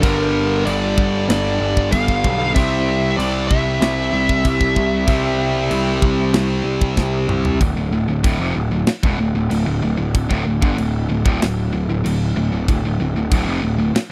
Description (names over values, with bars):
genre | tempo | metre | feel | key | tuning
heavy metal | 95 BPM | 4/4 | straight | unclear | A4 = 440 Hz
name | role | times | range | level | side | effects
high-gain lead guitar | melody | 0.0-6.9 s | Bb4 to F5 | -24 LUFS | equal | distortion, slapback echo
high-gain distorted guitar | riff | 0.0-14.0 s | D2 to C4 | -25 LUFS | equal | distortion
tight distorted guitar | riff | 0.0-7.6 s | G2 to C4 | -26 LUFS | equal | distortion
fuzz picked electric bass | bass | 0.0-14.0 s | D1 to C2 | -23 LUFS | equal | overdrive
tight metal drum kit | drums | 0.0-14.1 s | crash cymbal, kick drum, snare drum, toms | -23 LUFS | equal | none
room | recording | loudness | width
little or no reverb | dry, close 1970s-style studio recording | -18 LUFS | mono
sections
0.0-7.6 A section; 7.6-14.1 B section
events
drum fill 7.0-7.6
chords
0.0 Gm; 2.5 C; 7.6 D5